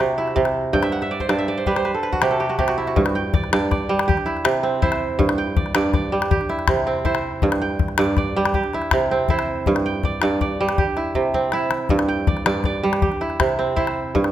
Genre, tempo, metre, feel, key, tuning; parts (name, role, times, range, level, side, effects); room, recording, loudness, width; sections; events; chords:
west african traditional, West African string and xylophone music; 108 BPM (dotted quarters); 12/8; straight; A4 = 440 Hz
kora; arpeggios; 0.0-14.3 s; G2 to G5; -20 LUFS; right 2 dB
calabash; percussion; 0.0-14.3 s; -23 LUFS; left 4 dB
moderate recital hall reverb, RT60 1.4 s; -18 LUFS; side -12 dB against mid
0.0-3.0 A section; 3.0-14.3 B section
kora fill 0.7-3.0; drum fill 11.2-11.9
0.0 C; 0.7 N.C.; 3.0 G5; 4.1 C; 5.2 G5; 6.3 C; 7.4 G5; 8.5 C; 9.7 G5; 10.8 C; 11.9 G5; 13.0 C